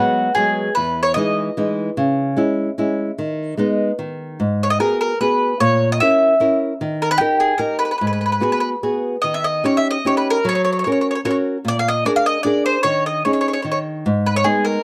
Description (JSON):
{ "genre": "italian folk, Italian serenade", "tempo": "149 BPM", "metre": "3/4", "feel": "swing 54% on 8ths", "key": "G# minor", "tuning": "A4 = 438 Hz", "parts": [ { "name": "mandolin", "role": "melody", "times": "0.0-1.7, 4.6-14.8 s", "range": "F#4 to E#5", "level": "-20 LUFS", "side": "equal", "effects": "none" }, { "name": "nylon-string guitar", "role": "accompaniment", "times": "0.0-14.8 s", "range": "E2 to A#4", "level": "-22 LUFS", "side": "equal", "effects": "none" } ], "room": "moderate studio reverb, RT60 0.5 s", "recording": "dark, warm production", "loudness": "-19 LUFS", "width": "mono", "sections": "0.0-14.8 A section", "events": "none", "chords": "0.0 G#m7; 0.8 Emaj7; 2.0 C#m; 3.2 G#m/D#; 4.0 N.C.; 4.4 G#m7; 5.6 A#dim; 6.8 D#; 8.0 G#m7; 9.2 D#7; 10.4 F#; 11.6 A#7; 12.8 D#7sus4; 13.6 N.C.; 14.0 G#m" }